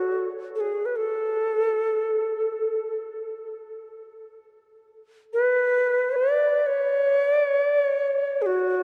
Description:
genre	world meditative, free-time meditation music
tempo	free time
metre	none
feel	none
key	F# minor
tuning	A4 = 438 Hz
part	Native American-style cedar flute	solo	0.0-8.8 s	F#4 to D5	-24 LUFS	equal	tape echo
room	wet cathedral reverb, RT60 5.8 s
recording	dark, warm production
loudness	-24 LUFS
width	mono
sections	0.0-8.8 A section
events	none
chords	none

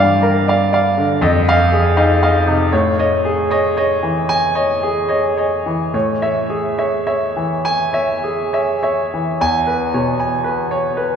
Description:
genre	classical, impressionist solo piano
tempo	33-40 BPM (dotted quarters)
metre	6/8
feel	rubato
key	unclear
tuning	A4 = 439 Hz
part	clear concert grand piano	solo	0.0-11.2 s	E2 to G#5	-14 LUFS	equal	none
room	wet cathedral reverb, RT60 4.4 s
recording	recorded in a church or concert hall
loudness	-14 LUFS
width	side -7 dB against mid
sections	0.0-9.4 A section; 9.4-11.2 B section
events	none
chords	0.0 Gm7; 1.2 Fm7; 2.7 Amaj7#11; 5.9 Amaj7; 9.4 E6

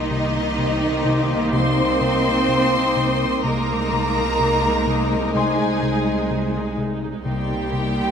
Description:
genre	cinematic, suspense film score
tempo	63 BPM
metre	4/4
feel	straight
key	C minor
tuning	A4 = 440 Hz
part	warm symphonic violin section	melody	0.0-8.1 s	Eb5 to C6	-26 LUFS	equal	none
part	rich symphonic violin section	second line	0.0-8.1 s	Eb4 to C5	-26 LUFS	equal	none
part	rich symphonic viola section	accompaniment	0.0-8.1 s	Ab3 to Eb4	-27 LUFS	right 2 dB	none
part	mellow French horn section	sustained chords	0.0-8.1 s	Ab3 to Eb4	-27 LUFS	left 4 dB	none
part	rich studio double bass section	bass	0.0-8.1 s	C2	-28 LUFS	right 3 dB	none
part	rich symphonic cello section	bass	0.0-8.1 s	Eb3 to C4	-26 LUFS	right 2 dB	none
part	concert harp	texture	0.0-8.1 s	G4 to C6	-32 LUFS	left 6 dB	none
part	rich chamber violin section	texture	0.0-8.1 s	C6 to Eb6	-32 LUFS	left 2 dB	none
part	round analog bass	riff	0.1-8.0 s	C3	-26 LUFS	left 3 dB	none
room	moderate scoring stage reverb, RT60 1.6 s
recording	none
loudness	-18 LUFS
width	side -7 dB against mid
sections	0.0-8.1 A section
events	none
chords	0.0 Cm7; 3.4 Abadd9/C; 7.3 Cm7

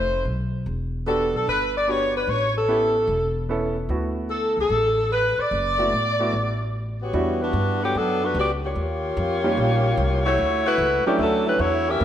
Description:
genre	jazz, big band swing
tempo	148 BPM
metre	4/4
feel	swing 67% on 8ths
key	D major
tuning	A4 = 441 Hz
part	warm saxophone section	melody	0.0-12.0 s	D3 to E5	-21 LUFS	left 1 dB	none
part	clear baby grand piano	accompaniment	0.0-12.0 s	F#3 to C5	-27 LUFS	right 2 dB	none
part	upright bass	bass	0.0-12.0 s	E1 to A2	-27 LUFS	equal	none
room	moderate scoring stage reverb, RT60 1.6 s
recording	none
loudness	-20 LUFS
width	side -10 dB against mid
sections	0.0-7.1 A section; 7.1-12.0 B section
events	none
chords	0.0 F7#11; 0.7 Em7; 2.3 A7; 3.9 D6; 7.1 Em9; 8.8 Eb13; 10.4 Dmaj9

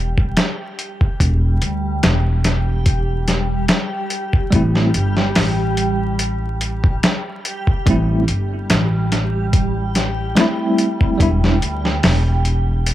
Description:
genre	trip hop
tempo	72 BPM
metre	4/4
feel	swing 54% on 16ths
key	A minor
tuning	A4 = 439 Hz
part	upright bass	bass	0.0-12.9 s	E1 to D2	-18 LUFS	equal	none
part	backwards swelling texture	texture	0.0-12.9 s	G3 to G4	-25 LUFS	right 1 dB	built-in reverb
part	dusty soul sampler-style drum kit	drums	0.2-12.9 s	hi-hat, kick drum, snare drum	-17 LUFS	equal	overdrive
part	bell-like tine electric piano	accompaniment	4.5-11.6 s	G3 to E4	-20 LUFS	equal	fast stereo tremolo, tape echo
room	light reverb, digital ambience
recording	vinyl crackle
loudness	-15 LUFS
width	side -14 dB against mid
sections	0.0-12.9 A section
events	none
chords	0.0 Em; 4.5 Am7; 11.2 Em7

